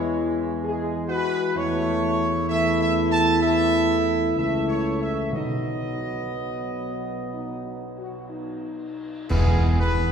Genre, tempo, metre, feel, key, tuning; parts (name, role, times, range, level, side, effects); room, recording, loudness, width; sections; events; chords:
classical, ceremonial fanfare; 59-65 BPM; 4/4; straight; E major; A4 = 442 Hz
warm trumpet section; melody; 0.0-10.1 s; G#4 to A5; -27 LUFS; right 2 dB
clear trombone section; sustained chords; 0.0-9.7 s; E3 to B3; -30 LUFS; equal
mellow French horn section; sustained chords; 0.0-10.1 s; G#3 to G#4; -27 LUFS; left 2 dB
dark tuba; bass; 0.0-10.1 s; B1 to E2; -28 LUFS; right 1 dB
cymbal swell, clash cymbals and concert bass drum; percussion; 5.3-10.1 s; -29 LUFS; equal
timpani; percussion; 5.3-10.1 s; E2 to B2; -24 LUFS; equal
wet concert hall reverb, RT60 2.4 s; heard from further back in the room; -21 LUFS; side -7 dB against mid
0.0-9.3 A section
band accent 9.3-10.1
0.0 E; 1.6 A/E; 5.3 B; 9.3 E